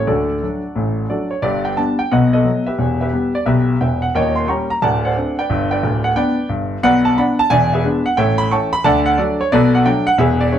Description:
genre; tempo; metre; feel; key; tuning
jazz, stride piano; 178 BPM; 4/4; swing 66% on 8ths; G major; A4 = 440 Hz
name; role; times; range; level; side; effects
clear concert grand piano; solo; 0.0-10.6 s; D1 to Db6; -14 LUFS; equal; none
room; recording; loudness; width
wet small room reverb, RT60 0.5 s; heard from further back in the room; -14 LUFS; side -10 dB against mid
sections
0.0-1.4 A section; 1.4-10.6 B section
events
none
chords
0.1 D; 1.4 G; 2.1 B7; 2.8 Em; 4.1 Eb7; 4.8 D7; 5.5 G; 6.8 Bm; 7.5 E7; 8.2 A7; 8.8 D; 9.5 Bm7

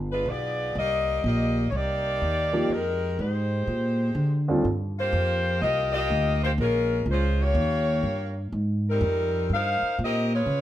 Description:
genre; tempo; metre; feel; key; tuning
jazz, big band swing; 124 BPM; 4/4; swing 66% on 8ths; Eb major; A4 = 442 Hz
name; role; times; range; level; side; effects
upright bass; bass; 0.0-10.6 s; G1 to D3; -26 LUFS; equal; none
clear saxophone section; melody; 0.1-10.6 s; G3 to F5; -26 LUFS; left 1 dB; none
warm grand piano; accompaniment; 2.5-4.6 s; Eb2 to G4; -26 LUFS; right 1 dB; none
room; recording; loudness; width
light reverb; none; -23 LUFS; side -12 dB against mid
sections
0.0-4.7 A section; 4.7-10.6 B section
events
none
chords
0.0 G7b9; 0.8 Cm9; 2.7 Fm9; 3.7 Bb9; 4.7 Ebmaj13; 6.6 Bbm7; 7.6 Eb9; 8.5 Abmaj9

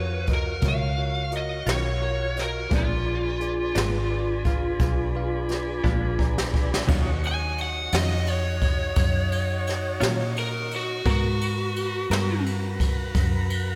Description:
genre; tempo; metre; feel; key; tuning
slow blues; 58 BPM (dotted quarters); 12/8; straight; Eb minor; A4 = 439 Hz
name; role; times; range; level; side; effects
lead guitar through a small cranked amp; melody; 0.0-12.4 s; F4 to Ab5; -31 LUFS; equal; overdrive, slapback echo
bell-like tine electric piano; accompaniment; 0.0-6.8 s; F4 to Bb5; -37 LUFS; equal; slapback echo
tonewheel organ; sustained chords; 0.0-13.8 s; D4 to Db5; -38 LUFS; equal; slow rotary speaker
vintage muted fingered electric bass; bass; 0.0-13.8 s; Ab1 to Bb2; -30 LUFS; equal; none
jazz brush drum kit; drums; 0.3-13.7 s; crash cymbal, hi-hat, kick drum, ride cymbal, snare drum; -29 LUFS; equal; none
direct-recorded clean electric guitar; accompaniment; 1.7-12.3 s; Bb2 to Bb4; -35 LUFS; equal; harmonic tremolo, slapback echo
room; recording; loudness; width
light reverb, small room ambience; none; -25 LUFS; mono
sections
0.0-6.9 A section; 6.9-13.8 B section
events
drum fill 5.8-6.9; tine electric piano fill 5.8-6.9; lead electric guitar solo 6.9-13.8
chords
0.0 Ebm9; 2.7 Bb7b9; 6.9 Ebm9; 11.1 Abm9

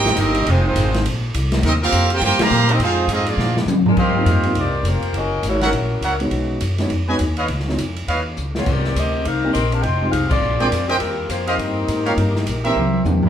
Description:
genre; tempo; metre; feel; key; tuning
jazz, big band swing; 205 BPM; 4/4; swing 61% on 8ths; Eb major; A4 = 445 Hz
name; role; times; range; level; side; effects
brilliant trumpet section; melody; 0.0-3.6, 13.2-13.3 s; G3 to Bb5; -19 LUFS; right 2 dB; none
bright trombone section; second line; 0.0-3.6, 11.5-13.3 s; C3 to G4; -24 LUFS; right 1 dB; none
upright bass; bass; 0.0-13.3 s; F1 to D3; -21 LUFS; equal; none
open jazz drum kit; drums; 0.1-13.3 s; crash cymbal, hi-hat, kick drum, ride cymbal, snare drum, toms; -23 LUFS; equal; none
mellow saxophone section; melody; 3.9-6.2, 8.6-13.0 s; Gb3 to G5; -22 LUFS; left 3 dB; none
warm trumpet section; stabs; 4.0-8.2, 10.6-13.0 s; G4 to G#5; -22 LUFS; right 2 dB; none
dark baby grand piano; accompaniment; 4.2-13.2 s; Fb3 to Bb4; -24 LUFS; right 1 dB; none
room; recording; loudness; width
wet large studio reverb, RT60 1.0 s; band playing live in one room; -16 LUFS; side -9 dB against mid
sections
0.0-4.0 A section; 4.0-13.3 B section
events
band accent 2.4, 10.3; drum fill 3.4-4.0, 8.4, 12.8-13.3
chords
0.5 Fm7; 1.0 Bbsus2; 1.6 Eb69; 2.8 Fm7; 3.4 Bb7; 4.0 Eb69; 5.1 Gb7; 6.3 B69; 7.5 Db9; 8.7 Cm7; 9.8 Fm7; 10.4 Bb13; 11.0 Eb69; 12.2 Gm; 12.8 C7

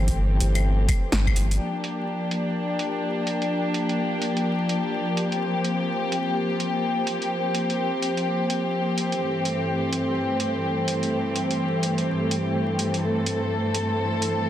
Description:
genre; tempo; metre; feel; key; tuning
future garage; 126 BPM; 4/4; swing 62% on 16ths; G dorian; A4 = 443 Hz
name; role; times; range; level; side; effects
dark studio string section; sustained chords; 0.0-14.5 s; G2 to A4; -23 LUFS; left 1 dB; vintage 12-bit sampler grit, sidechain pumping
warm sub bass; bass; 0.0-1.6 s; G1; -21 LUFS; equal; sidechain pumping
electronic kick drum; drums; 0.1-1.3 s; none; -23 LUFS; equal; studio reverb
garage drum kit; drums; 0.1-14.3 s; claves, hi-hat, snare drum; -29 LUFS; right 1 dB; overdrive, low-pass filter on hats, studio reverb, low-pass filter on perc, low-pass filter on snare
room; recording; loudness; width
moderate lush hall reverb, RT60 1.9 s; dense, heavily limited modern master, vinyl crackle; -22 LUFS; side -11 dB against mid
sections
0.0-1.6 A section; 1.6-14.5 B section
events
band accent 1.1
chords
0.0 Am7/G; 1.6 Gm7; 9.2 Am7/G

